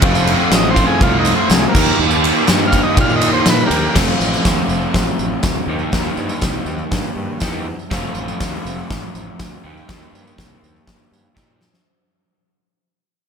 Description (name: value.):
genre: garage rock duo or trio.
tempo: 122 BPM.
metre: 4/4.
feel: straight.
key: unclear.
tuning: A4 = 442 Hz.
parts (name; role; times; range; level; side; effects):
raw garage guitar; riff; 0.0-11.6 s; Eb3 to G4; -19 LUFS; equal; overdrive.
fuzz fingered electric bass; bass; 0.0-11.7 s; F1 to Bb2; -23 LUFS; equal; overdrive.
oversized low-tuned drum kit; drums; 0.0-11.9 s; crash cymbal, hi-hat, kick drum, ride cymbal, snare drum; -17 LUFS; equal; none.
tambourine; percussion; 0.1-11.7 s; none; -32 LUFS; right 10 dB; none.
combo organ; melody; 0.5-4.0 s; Ab3 to F5; -19 LUFS; equal; none.
room: light reverb.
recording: none.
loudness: -14 LUFS.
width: side -6 dB against mid.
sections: 0.0-4.0 A section; 4.0-11.9 B section.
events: fade-out 4.0-11.9; drum fill 11.4-11.9.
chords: 0.0 F; 1.7 Eb; 4.0 F; 5.7 Eb; 7.9 F; 9.6 Eb.